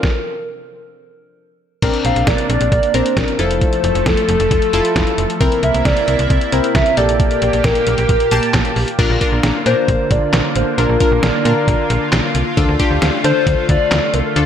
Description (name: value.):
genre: synth-pop.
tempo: 134 BPM.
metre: 4/4.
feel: straight.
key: unclear.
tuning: A4 = 440 Hz.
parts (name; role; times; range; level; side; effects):
hollow clarinet-like synth lead; melody; 0.0-14.5 s; A4 to F5; -18 LUFS; left 1 dB; chorus, phaser, ping-pong delay.
lo-fi sampler-style drum kit; drums; 0.0-14.5 s; crash cymbal, handclaps, hi-hat, kick drum, snare drum; -18 LUFS; equal; gated reverb.
funky polysynth comp; accompaniment; 1.8-14.5 s; Bb3 to A5; -20 LUFS; left 3 dB; chorus.
lush unison pad; sustained chords; 1.8-14.5 s; Bb2 to A4; -21 LUFS; right 1 dB; chorus.
slap-like FM bass; bass; 1.8-14.4 s; F1 to D3; -18 LUFS; equal; none.
room: light reverb, digital ambience.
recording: none.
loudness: -13 LUFS.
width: side -9 dB against mid.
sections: 0.0-1.8 A section; 1.8-9.0 B section; 9.0-14.5 C section.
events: stop 0.0-1.8.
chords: 0.0 N.C.; 1.8 Bbadd9; 3.4 Fmaj7; 5.4 C7; 7.0 Gmadd9/Bb; 9.0 Bb; 12.6 Dm.